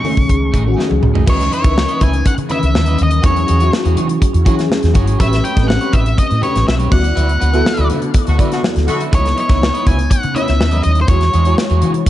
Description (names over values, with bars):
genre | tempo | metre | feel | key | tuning
polished 1980s jazz-funk pop | 122 BPM | 4/4 | straight | C# minor | A4 = 437 Hz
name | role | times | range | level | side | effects
octave-fuzz lead guitar | melody | 0.0-11.5 s | B#4 to C#6 | -20 LUFS | left 1 dB | distortion, ping-pong delay
FM electric piano with soft pad layer | accompaniment | 0.0-12.1 s | D#3 to D5 | -20 LUFS | left 2 dB | ensemble chorus
electric guitar at the edge of break-up | riff | 0.0-12.1 s | A3 to F#5 | -26 LUFS | right 4 dB | wide subtle chorus
modern studio drum kit | drums | 0.0-12.1 s | crash cymbal, hi-hat, kick drum, snare drum, toms | -16 LUFS | equal | none
congas | percussion | 0.0-11.9 s | none | -28 LUFS | left 2 dB | none
fretless electric bass | bass | 0.2-12.0 s | G1 to E3 | -15 LUFS | equal | ensemble chorus
warm horn section | second line | 8.3-9.0 s | B2 to F#4 | -24 LUFS | left 1 dB | ping-pong delay
room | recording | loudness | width
light reverb, small room ambience | dark, warm production, nothing above 10.8 kHz | -12 LUFS | side -13 dB against mid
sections
0.0-1.3 A section; 1.3-12.1 B section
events
drum fill 0.8-1.3; band accent 7.2-9.1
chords
0.0 B13 (rootless); 1.3 C#m9; 3.2 E69; 5.2 A9; 6.9 D69; 9.1 C#m9; 11.1 E69